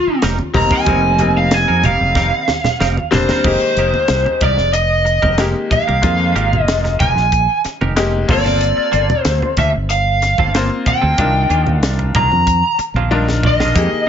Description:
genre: electric jazz fusion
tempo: 93 BPM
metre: 4/4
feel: straight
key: F dorian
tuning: A4 = 440 Hz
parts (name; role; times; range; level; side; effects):
- lead guitar through a small cranked amp; melody; 0.0-14.1 s; F4 to Bb5; -16 LUFS; equal; overdrive
- fretless electric bass; bass; 0.1-14.0 s; F1 to F2; -17 LUFS; equal; analog chorus
- clean electric guitar; stabs; 0.2-14.1 s; Eb3 to Bb4; -25 LUFS; right 5 dB; analog chorus
- crisp fusion drum kit; drums; 0.2-13.9 s; crash cymbal, hi-hat, kick drum, snare drum, toms; -21 LUFS; equal; none
- congas; percussion; 0.4-13.8 s; none; -22 LUFS; right 2 dB; none
- bright concert grand piano; accompaniment; 0.5-14.1 s; G3 to C5; -20 LUFS; left 4 dB; plate reverb
room: light reverb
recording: nothing above 7.7 kHz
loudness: -12 LUFS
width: side -8 dB against mid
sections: 0.0-3.5 A section; 3.5-14.1 B section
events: lead electric guitar solo 0.0-3.5; drum fill 2.2-3.5, 13.1-13.8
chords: 0.0 F9sus4; 3.5 Fm11; 8.3 Gm11; 11.2 Cm11

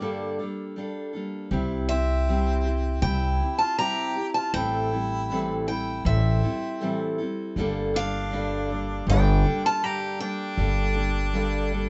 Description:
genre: acoustic folk duo or small band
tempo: 79 BPM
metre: 4/4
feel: straight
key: G dorian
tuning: A4 = 440 Hz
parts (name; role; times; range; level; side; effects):
- picked steel-string acoustic guitar; melody; 0.0-11.9 s; E5 to Bb5; -31 LUFS; equal; none
- warm harmonica; second line; 0.0-11.9 s; C4 to D5; -36 LUFS; equal; none
- picked steel-string acoustic guitar; accompaniment; 0.0-11.9 s; G2 to A4; -32 LUFS; equal; none
- upright bass; bass; 1.5-11.9 s; G1 to C2; -27 LUFS; equal; none
room: moderate studio ambience, RT60 0.5 s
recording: band playing live in one room, nothing above 7.9 kHz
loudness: -26 LUFS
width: mono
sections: 0.0-1.5 A section; 1.5-11.9 B section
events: break 0.0-1.5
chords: 0.0 Gmadd9; 1.5 C; 4.5 Am7; 7.6 Gmadd9

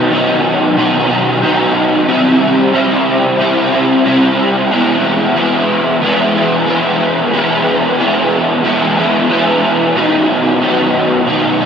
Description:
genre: rock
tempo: 91 BPM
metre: 4/4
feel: straight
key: unclear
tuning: A4 = 445 Hz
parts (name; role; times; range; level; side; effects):
- crunchy overdriven guitar; solo; 0.0-11.7 s; B2 to E4; -10 LUFS; equal; ensemble chorus, diffuse ambient delay
room: wet huge ambient reverb, RT60 7.8 s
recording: dreamy mix soaked in reverb, nothing above 7.7 kHz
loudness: -10 LUFS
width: side -7 dB against mid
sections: 0.0-11.7 A section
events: none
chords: 0.0 B; 2.1 C; 4.7 E; 10.0 B

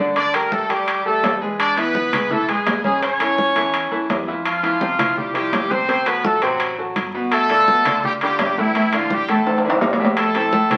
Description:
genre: latin, salsa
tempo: 168 BPM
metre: 4/4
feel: straight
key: unclear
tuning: A4 = 437 Hz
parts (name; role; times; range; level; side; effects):
- bright concert grand piano; accompaniment; 0.0-10.8 s; A2 to E5; -25 LUFS; equal; none
- upright bass; bass; 0.0-10.8 s; G1 to F2; -43 LUFS; equal; none
- brilliant horn section; melody; 0.2-10.8 s; E3 to D5; -21 LUFS; equal; none
- congas; percussion; 0.2-10.8 s; none; -31 LUFS; equal; none
- timbales; percussion; 0.2-10.8 s; none; -25 LUFS; equal; none
room: wet studio reverb, RT60 0.7 s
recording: very old 78 rpm record, vinyl crackle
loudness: -19 LUFS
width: mono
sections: 0.0-4.5 A section; 4.5-10.8 B section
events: drum fill 9.5-10.2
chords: 0.2 Gmadd9/D; 1.6 E7; 3.0 A; 4.5 Fsus2; 5.9 D6; 7.3 G7; 8.7 A7sus4; 10.2 Fmaj7

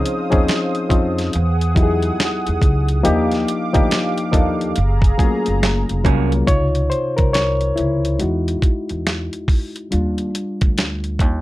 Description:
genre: R&B, neo-soul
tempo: 70 BPM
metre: 4/4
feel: swing 62% on 16ths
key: Db major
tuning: A4 = 444 Hz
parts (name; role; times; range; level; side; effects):
- reed electric piano; accompaniment; 0.0-11.4 s; C3 to Db5; -20 LUFS; left 2 dB; overdrive
- warm analog pad; sustained chords; 0.0-6.5 s; G4 to Eb6; -26 LUFS; right 2 dB; chorus
- boom bap sampler-style drum kit; drums; 0.1-11.4 s; hi-hat, kick drum, snare drum; -18 LUFS; equal; none
- upright bass; bass; 0.3-11.4 s; F1 to F2; -20 LUFS; equal; none
- electric guitar through a small old amp; second line; 5.6-6.3 s; F3 to Ab4; -23 LUFS; right 11 dB; none
room: light reverb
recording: dark, warm production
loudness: -16 LUFS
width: side -17 dB against mid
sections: 0.0-6.5 A section; 6.5-11.4 B section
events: reed electric piano solo 6.5-11.4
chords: 0.0 Dbmaj9; 1.3 Emaj9; 3.0 Ebmaj9; 4.8 Gbmaj9; 6.5 Dbmaj9; 8.2 Emaj9; 9.9 Ebmaj9

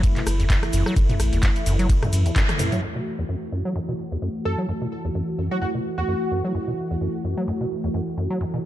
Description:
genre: acid house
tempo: 129 BPM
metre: 4/4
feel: swing 56% on 16ths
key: F# minor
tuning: A4 = 442 Hz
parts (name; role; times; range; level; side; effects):
- warm analog pad; sustained chords; 0.0-8.7 s; E3 to F#4; -28 LUFS; equal; chorus, sidechain pumping
- acid bass, square; riff; 0.0-8.6 s; E2 to F#3; -26 LUFS; equal; digital delay
- round analog bass; bass; 0.0-2.2 s; F#1 to F#2; -23 LUFS; equal; sidechain pumping
- electro analog drum machine; drums; 0.0-2.8 s; handclaps, hi-hat, ride cymbal, rim click, toms; -27 LUFS; equal; low-pass filter on hats, studio ambience, low-pass filter on cymbals, low-pass filter on snare, low-pass filter on toms
- electronic kick drum; drums; 0.0-2.5 s; none; -20 LUFS; equal; overdrive, studio ambience
- tube shaker; percussion; 0.0-2.8 s; none; -39 LUFS; left 3 dB; none
- plucky unison lead; melody; 4.5-6.6 s; F#4 to A4; -30 LUFS; right 2 dB; analog chorus, digital delay
room: light reverb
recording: dark, warm production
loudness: -21 LUFS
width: side -13 dB against mid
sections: 0.0-2.8 A section; 2.8-8.7 B section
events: drop 0.0-2.8; band accent 2.4; drum fill 2.5-2.8; filter sweep on acid bass 2.8-8.7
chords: 0.0 F#m7

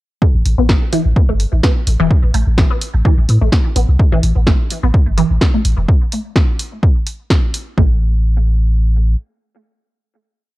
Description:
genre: minimal techno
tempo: 127 BPM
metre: 4/4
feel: swing 54% on 16ths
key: unclear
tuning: A4 = 440 Hz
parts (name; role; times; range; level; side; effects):
- resonant blip pluck; riff; 0.2-8.0 s; E3 to B3; -21 LUFS; equal; phaser, analog chorus, sidechain pumping, tape echo
- electronic kick drum; drums; 0.2-7.9 s; none; -13 LUFS; equal; none
- punchy sub bass; bass; 0.3-9.2 s; E1 to A2; -13 LUFS; equal; sidechain pumping
- punchy analog drum machine; drums; 0.5-7.6 s; hi-hat, snare drum; -20 LUFS; equal; none
room: digital ambience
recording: dry, gritty hardware recording, transformer saturation, cassette tape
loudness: -12 LUFS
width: side -18 dB against mid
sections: 0.2-7.8 groove; 7.8-10.6 final note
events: none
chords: none

